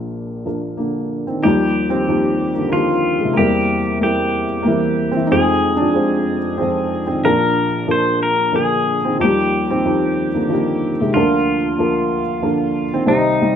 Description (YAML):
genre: acoustic folk-pop ballad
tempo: 93 BPM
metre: 3/4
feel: straight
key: Eb major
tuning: A4 = 440 Hz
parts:
  - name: felt-muted upright piano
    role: melody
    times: 0.0-13.6 s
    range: F1 to C5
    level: -16 LUFS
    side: equal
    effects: none
  - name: pedal steel guitar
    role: second line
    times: 1.4-13.6 s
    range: Eb4 to C5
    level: -20 LUFS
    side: left 1 dB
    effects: none
room: light reverb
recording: minimal, uncompressed stereo recording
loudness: -15 LUFS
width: side -8 dB against mid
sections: 0.0-1.4 A section; 1.4-13.6 A section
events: none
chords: 0.0 Bb; 1.4 Ebadd9; 3.4 C7/E; 5.3 Fm; 7.3 Bb; 9.2 Ebadd9; 11.1 Bb/D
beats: 0.12 0.78 | 1.44 2.09 2.74 | 3.38 4.03 4.67 | 5.32 5.96 6.61 | 7.25 7.90 8.55 | 9.21 9.86 10.50 | 11.15 11.79 12.44 | 13.08